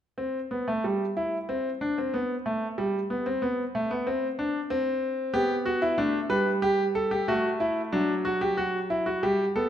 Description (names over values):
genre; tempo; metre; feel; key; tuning
classical, baroque-style 4-part fugue for grand piano; 93 BPM; 4/4; straight; unclear; A4 = 441 Hz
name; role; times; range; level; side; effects
clear concert grand piano; solo; 0.2-9.7 s; F#3 to B4; -25 LUFS; equal; none
room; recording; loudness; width
wet recital hall reverb, RT60 1.7 s; dark, warm production; -25 LUFS; side -10 dB against mid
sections
0.2-9.7 A section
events
none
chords
0.2 N.C.; 5.3 G/B; 6.6 A5/G; 7.9 D/F#